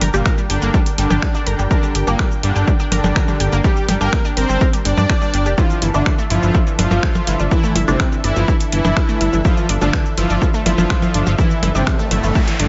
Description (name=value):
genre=melodic techno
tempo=124 BPM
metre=4/4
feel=straight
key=G dorian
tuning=A4 = 440 Hz
part: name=lush unison pad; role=sustained chords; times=0.0-12.7 s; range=D4 to G5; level=-31 LUFS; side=equal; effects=chorus, phaser, sidechain pumping
part: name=unison pluck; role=arpeggios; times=0.0-12.7 s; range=E3 to Bb5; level=-26 LUFS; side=equal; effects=sidechain pumping, tape echo
part: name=fat analog bass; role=bass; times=0.0-12.7 s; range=F1 to G2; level=-21 LUFS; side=equal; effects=sidechain pumping
part: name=techno drum kit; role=drums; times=0.0-12.7 s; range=finger snaps, hi-hat, percussion blips, shaker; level=-25 LUFS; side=equal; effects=sidechain pumping on perc, sidechain pumping on hats, sidechain pumping on cymbals
part: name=soft supersaw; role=melody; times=0.1-12.7 s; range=A2 to D5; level=-25 LUFS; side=equal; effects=sidechain pumping, tape echo
part: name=big bright polysynth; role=second line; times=0.1-12.7 s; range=A2 to D4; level=-31 LUFS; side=equal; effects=none
part: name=filtered dub chord stab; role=stabs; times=0.1-9.9 s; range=D3 to G4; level=-27 LUFS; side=equal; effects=none
part: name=electronic kick drum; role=drums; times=0.3-12.5 s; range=none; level=-20 LUFS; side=equal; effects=none
part: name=noise sweep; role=sound effects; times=11.9-12.7 s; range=none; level=-29 LUFS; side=equal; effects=none
room=light reverb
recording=nothing above 7.7 kHz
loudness=-17 LUFS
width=mono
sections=0.0-12.7 A section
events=noise sweep 11.9-12.7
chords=0.0 Gm; 5.6 Dmadd9/G